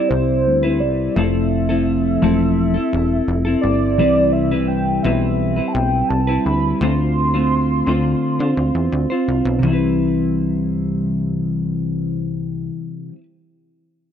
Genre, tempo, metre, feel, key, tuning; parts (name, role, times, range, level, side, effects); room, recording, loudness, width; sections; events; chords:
indie pop, bedroom pop; 85 BPM; 4/4; straight; C major; A4 = 440 Hz
warm velvety synth lead; melody; 0.0-8.9 s; C5 to C6; -22 LUFS; right 1 dB; analog chorus, ping-pong delay
semi-hollow electric guitar; accompaniment; 0.0-13.2 s; C3 to C5; -18 LUFS; left 1 dB; lush chorus, warbly pitch drift
plucky analog bass; bass; 0.1-12.7 s; E1 to D3; -21 LUFS; equal
light reverb, digital ambience; rough home demo mix; -16 LUFS; side -9 dB against mid
0.0-9.6 A section; 9.6-12.5 B section
0.0 Cmaj7; 1.2 Fmaj7; 4.0 Cmaj7; 6.8 Dm7; 9.6 Cmaj7